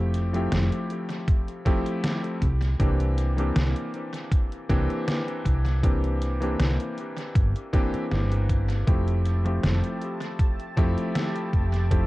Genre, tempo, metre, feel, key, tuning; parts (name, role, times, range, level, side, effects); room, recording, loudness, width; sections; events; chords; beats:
vaporwave; 79 BPM; 4/4; swing 53% on 16ths; F major; A4 = 442 Hz
warm electric grand piano; accompaniment; 0.0-12.1 s; E3 to G4; -29 LUFS; left 1 dB; wide subtle chorus, tape echo
woody fretless electric bass; bass; 0.0-12.1 s; F1 to C2; -24 LUFS; equal; wide subtle chorus
detuned 8-bit digital drum machine; drums; 0.1-12.1 s; hi-hat, snare drum; -32 LUFS; equal; tape echo
electronic kick drum; drums; 1.3-12.1 s; -23 LUFS; equal
lush unison pad; sustained chords; 8.9-12.1 s; G4 to A5; -37 LUFS; right 2 dB; chorus, vintage 12-bit sampler grit
light reverb; echo-heavy mix, cassette tape; -23 LUFS; side -19 dB against mid
0.0-12.1 A section
0.0 Fmaj9; 2.4 C9; 8.9 Fmaj9
0.52 1.28 2.04 | 2.80 3.56 4.32 5.08 | 5.84 6.60 7.36 8.12 | 8.88 9.63 10.39 11.15 | 11.91